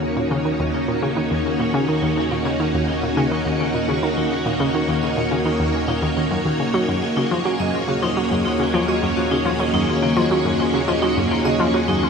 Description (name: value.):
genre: ambient, sequencer-driven space music.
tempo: 105 BPM.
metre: 4/4.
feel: straight.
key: Eb minor.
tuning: A4 = 440 Hz.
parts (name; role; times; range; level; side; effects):
string machine, full ensemble; sustained chords; 0.0-12.1 s; Bb3 to Db5; -21 LUFS; equal; ensemble chorus.
analog drone; bass; 0.0-12.1 s; Eb2; -30 LUFS; equal; chorus, phaser.
vibraphone with hard mallets; arpeggios; 0.2-11.9 s; Bb3 to Eb5; -28 LUFS; right 1 dB; auto-pan, ping-pong delay.
analog pluck; riff; 0.2-12.0 s; Eb2 to Gb3; -22 LUFS; left 1 dB; chorus, ping-pong delay.
room: wet cathedral reverb, RT60 5.8 s.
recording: in a vast, echoing space.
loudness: -18 LUFS.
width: side -6 dB against mid.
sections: 0.0-12.1 A section.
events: fade-in on vibraphone 0.0-12.1.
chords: 0.0 Ebm7; 6.9 Gbadd9/Eb.